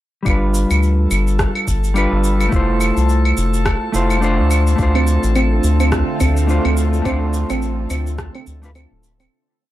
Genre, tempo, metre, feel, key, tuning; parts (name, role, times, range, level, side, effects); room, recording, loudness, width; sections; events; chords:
sunset chillout; 106 BPM; 4/4; swing 57% on 16ths; D dorian; A4 = 440 Hz
mellow electric guitar; accompaniment; 0.2-8.7 s; G3 to C5; -20 LUFS; equal; auto-pan, vintage 12-bit sampler grit, low-pass filter, tape echo
round analog bass; bass; 0.3-9.3 s; D1 to D2; -17 LUFS; equal
electronic claves, cabasa and rim click; drums; 0.3-9.3 s; -24 LUFS; right 1 dB
electronic kick drum; drums; 0.3-8.3 s; -21 LUFS; equal
drifting glass-harmonics texture; texture; 0.8-9.3 s; A4 to A5; -29 LUFS; equal; chorus, built-in reverb
soft string machine; sustained chords; 5.2-9.3 s; D3 to F4; -26 LUFS; right 1 dB; ensemble chorus
soft round pluck; arpeggios; 5.0-9.3 s; C4; -24 LUFS; right 4 dB; chorus, tape echo
digital ambience; dry, gritty hardware recording, transformer saturation; -14 LUFS; side -14 dB against mid
0.3-9.3 groove
fade-out 6.3-9.3
0.3 G7; 2.5 Fmaj7; 4.5 Dm7